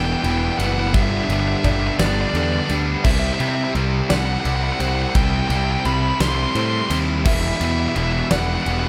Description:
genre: post-rock.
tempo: 57 BPM (dotted quarters).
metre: 6/8.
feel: straight.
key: unclear.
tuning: A4 = 441 Hz.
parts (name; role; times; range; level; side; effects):
nasal lead guitar with a parked wah; melody; 0.0-8.9 s; D5 to C6; -27 LUFS; equal; overdrive, analog delay.
sweeping resonant pad; sustained chords; 0.4-8.9 s; C3 to D5; -38 LUFS; equal; none.
clean electric guitar; arpeggios; 0.0-3.0 s; G2 to B3; -33 LUFS; equal; none.
felt-muted upright piano; arpeggios; 0.0-8.9 s; A4 to E5; -36 LUFS; equal; none.
overdriven electric guitar; riff; 0.0-8.9 s; E2 to C4; -29 LUFS; equal; none.
tight distorted guitar; riff; 0.0-8.9 s; G2 to E4; -28 LUFS; equal; distortion.
fuzz picked electric bass; bass; 0.0-8.9 s; E1 to C3; -24 LUFS; equal; overdrive.
huge arena drum kit; drums; 0.2-8.8 s; crash cymbal, kick drum, ride cymbal, snare drum; -27 LUFS; equal; none.
room: light reverb, small room ambience.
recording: none.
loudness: -20 LUFS.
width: mono.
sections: 0.0-8.9 A section.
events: none.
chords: 0.0 Emadd9; 0.9 G; 3.0 C; 7.3 Emadd9.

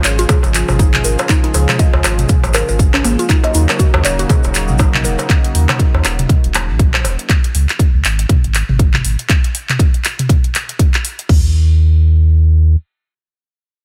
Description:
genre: afro house.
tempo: 120 BPM.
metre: 4/4.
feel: swing 58% on 16ths.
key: Eb minor.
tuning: A4 = 445 Hz.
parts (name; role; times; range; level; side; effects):
warm analog pad; sustained chords; 0.0-7.3 s; Db3 to Ab4; -26 LUFS; equal; chorus, sidechain pumping.
mallet-like synth pluck; arpeggios; 0.0-5.2 s; Bb3 to Eb5; -23 LUFS; equal; chorus, phaser, sidechain pumping, dub echo.
warm sub bass; bass; 0.0-12.8 s; Eb1 to Eb2; -16 LUFS; equal; sidechain pumping.
afro-pop drum kit; drums; 0.0-11.4 s; crash cymbal, handclaps, hi-hat, toms; -21 LUFS; equal; none.
egg shaker; percussion; 0.0-5.3 s; none; -28 LUFS; equal; none.
electronic kick drum; drums; 0.3-11.4 s; none; -15 LUFS; equal; none.
darbuka; percussion; 0.3-7.2 s; none; -25 LUFS; equal; none.
room: digital ambience.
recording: none.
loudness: -13 LUFS.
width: mono.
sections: 0.0-11.3 A section; 11.3-13.8 B section.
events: drop 0.0-11.3.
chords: 0.0 Db; 3.3 Ebm7; 7.3 N.C..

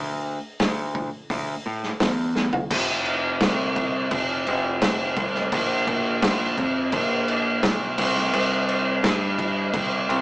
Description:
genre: classic rock.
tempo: 85 BPM.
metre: 4/4.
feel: straight.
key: unclear.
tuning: A4 = 441 Hz.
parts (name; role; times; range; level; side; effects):
growling picked electric bass; bass; 0.0-10.2 s; F1 to A2; -26 LUFS; equal; overdrive.
vintage drum kit; drums; 0.6-10.2 s; crash cymbal, hi-hat, kick drum, snare drum, toms; -22 LUFS; equal; none.
room: light reverb.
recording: rough rehearsal-room recording, small speaker sound.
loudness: -21 LUFS.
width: side -22 dB against mid.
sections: 0.0-2.7 A section; 2.7-10.2 B section.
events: drum fill 2.4-2.7.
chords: none.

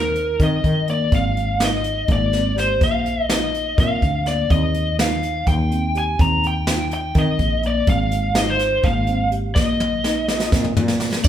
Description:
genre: progressive instrumental, band music in an uneven meter.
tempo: 249 BPM (eighths).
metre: 7/8.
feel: straight.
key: Eb major.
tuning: A4 = 440 Hz.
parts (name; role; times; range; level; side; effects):
lead guitar through a small cranked amp; melody; 0.0-11.3 s; Bb4 to Bb5; -22 LUFS; left 1 dB; overdrive.
marimba with soft mallets; arpeggios; 0.0-11.3 s; Bb3 to G4; -26 LUFS; right 1 dB; none.
woody fretless electric bass; bass; 0.0-11.3 s; Ab1 to Eb3; -22 LUFS; equal; none.
jazz brush drum kit; drums; 0.2-11.3 s; crash cymbal, hi-hat, kick drum, snare drum, toms; -21 LUFS; equal; none.
mellow duduk; second line; 11.2-11.3 s; D4; -25 LUFS; right 12 dB; none.
room: moderate large studio reverb, RT60 1.3 s.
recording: band playing live in one room.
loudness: -17 LUFS.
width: side -10 dB against mid.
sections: 0.0-11.2 A section.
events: drum fill 9.6-11.2.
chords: 0.0 Eb5; 1.1 Ab; 2.8 Bbsus4; 4.5 Eb6; 7.9 Ab; 9.6 Bbsus4.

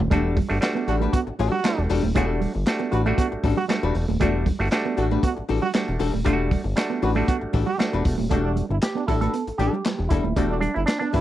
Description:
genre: funk.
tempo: 117 BPM.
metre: 4/4.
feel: straight.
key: E minor.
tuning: A4 = 440 Hz.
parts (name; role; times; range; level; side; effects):
archtop guitar, miked and amplified; accompaniment; 0.0-11.2 s; G3 to B4; -28 LUFS; left 7 dB; none.
mellow electric guitar; riff; 0.0-11.2 s; G3 to B3; -29 LUFS; right 8 dB; none.
fat analog bass; bass; 0.0-11.2 s; D#1 to A1; -24 LUFS; equal; none.
crunchy breakbeat drum kit; drums; 0.0-11.2 s; handclaps, hi-hat, kick drum, snare drum, toms; -25 LUFS; equal; none.
auto-wah clav; stabs; 0.1-11.2 s; G3 to A4; -28 LUFS; right 2 dB; none.
brilliant trombone; second line; 0.9-11.2 s; D4 to G4; -28 LUFS; right 5 dB; none.
room: little or no reverb.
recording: dry, close 1970s-style studio recording.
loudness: -20 LUFS.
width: side -13 dB against mid.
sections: 0.0-8.3 A section; 8.3-11.2 B section.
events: clav solo 8.3-11.2.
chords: 0.0 Em11.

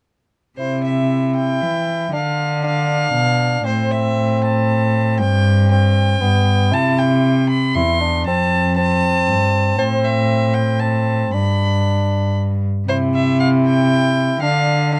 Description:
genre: classical, renaissance-style consort dance.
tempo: 117 BPM.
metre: 3/4.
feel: straight.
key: C major.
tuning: A4 = 445 Hz.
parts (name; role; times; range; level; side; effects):
rich violin; melody; 0.6-15.0 s; C5 to C6; -24 LUFS; equal; none.
mellow bassoon; accompaniment; 0.6-15.0 s; B3 to E4; -24 LUFS; equal; none.
rich cello; bass; 0.6-15.0 s; E2 to E3; -19 LUFS; equal; none.
room: light reverb.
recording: dark, warm production.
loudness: -17 LUFS.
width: mono.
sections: 0.6-12.9 A section; 12.9-15.0 A section.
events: none.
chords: 0.6 C; 2.1 Dm; 3.7 Am; 5.2 Gsus4; 6.2 G; 6.7 C; 8.3 F; 9.8 Am; 11.3 G; 12.9 C; 14.4 Dm.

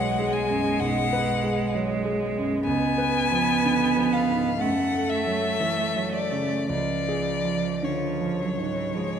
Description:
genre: classical, slow romantic movement for piano trio.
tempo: 53-66 BPM.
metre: 4/4.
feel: rubato.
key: unclear.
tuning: A4 = 440 Hz.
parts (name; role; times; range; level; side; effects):
rich violin; melody; 0.0-9.2 s; C#5 to G#5; -27 LUFS; left 6 dB; none.
rich cello; second line; 0.0-9.2 s; E#3 to B3; -27 LUFS; right 6 dB; none.
warm concert grand piano; accompaniment; 0.0-9.2 s; B1 to B4; -27 LUFS; equal; none.
room: wet recital hall reverb, RT60 1.6 s.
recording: none.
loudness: -22 LUFS.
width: side -8 dB against mid.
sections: 0.0-9.2 A section.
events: none.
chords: 0.0 G#m7/B; 2.7 C#7b9; 4.6 F#m; 6.7 C#.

